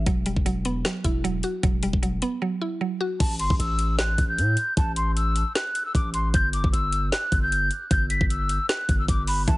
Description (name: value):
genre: hip hop, trap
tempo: 153 BPM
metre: 4/4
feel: half-time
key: A dorian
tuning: A4 = 440 Hz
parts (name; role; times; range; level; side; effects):
- mallet-like synth pluck; accompaniment; 0.0-3.2, 9.5-9.6 s; E3 to F#4; -27 LUFS; right 2 dB; chorus
- long sustained 808-style bass; bass; 0.0-9.6 s; E1 to A2; -26 LUFS; equal; none
- trap drum kit; drums; 0.1-9.6 s; crash cymbal, hi-hat, kick drum, snare drum; -24 LUFS; equal; none
- mellow hollow jazz flute; melody; 3.2-9.6 s; A5 to B6; -26 LUFS; equal; tape echo
room: digital ambience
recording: heavily compressed radio sound, nothing above 10.6 kHz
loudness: -22 LUFS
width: side -19 dB against mid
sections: 0.0-3.2 A section; 3.2-9.6 B section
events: break 0.0-3.2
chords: 0.1 Emadd9; 3.2 A5; 6.3 G5